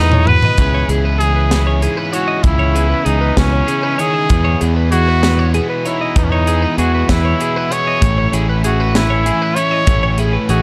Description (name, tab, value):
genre	math rock and midwest emo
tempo	64 BPM (dotted quarters)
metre	6/8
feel	straight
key	unclear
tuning	A4 = 440 Hz
part	bright trumpet	melody	0.0-10.6 s	C#4 to C#5	-21 LUFS	equal	none
part	twelve-string electric guitar	accompaniment	0.0-10.6 s	E2 to G#4	-25 LUFS	equal	none
part	twelve-string electric guitar	arpeggios	0.0-10.6 s	G#4 to D#5	-24 LUFS	equal	none
part	modern bright picked electric bass	bass	0.0-10.6 s	A1 to E2	-18 LUFS	equal	none
part	crisp fusion drum kit	drums	0.1-10.6 s	hi-hat, kick drum, snare drum, toms	-19 LUFS	equal	none
part	overdriven electric guitar	riff	0.6-10.6 s	A2 to E4	-27 LUFS	equal	none
room	light reverb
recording	dark, warm production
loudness	-15 LUFS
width	mono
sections	0.6-10.6 A section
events	drum fill 0.0-0.6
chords	0.0 Emaj7(no3); 0.6 C#m7; 4.3 Emaj7; 8.0 Amaj7